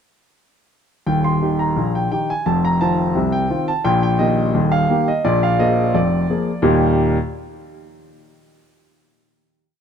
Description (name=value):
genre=ragtime piano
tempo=86 BPM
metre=2/4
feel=straight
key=Eb major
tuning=A4 = 440 Hz
part: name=warm concert grand piano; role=solo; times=1.1-7.2 s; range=Eb1 to C6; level=-16 LUFS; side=equal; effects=none
room=light reverb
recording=dark, warm production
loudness=-16 LUFS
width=side -7 dB against mid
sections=1.1-6.6 A section; 6.6-8.0 final chord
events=none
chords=1.1 Eb; 2.5 F5; 3.9 Eb/Bb; 5.2 Bb7; 6.6 Eb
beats=| 1.07 1.77 | 2.47 3.16 | 3.85 4.55 | 5.25 5.95 | 6.65